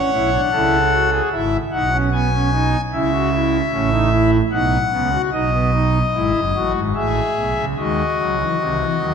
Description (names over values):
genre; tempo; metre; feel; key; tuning
classical, baroque-style 4-part fugue for pipe organ; 74 BPM; 4/4; straight; unclear; A4 = 440 Hz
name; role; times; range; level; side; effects
pipe organ, foundations; solo; 0.0-9.1 s; F#1 to G#5; -16 LUFS; equal; none
room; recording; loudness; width
wet concert hall reverb, RT60 2.2 s; none; -16 LUFS; side -7 dB against mid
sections
0.0-7.8 A section; 7.8-9.1 B section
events
none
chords
0.0 A; 1.3 E/G#; 2.9 F#m7/C#; 4.5 B; 6.1 E; 7.8 G#7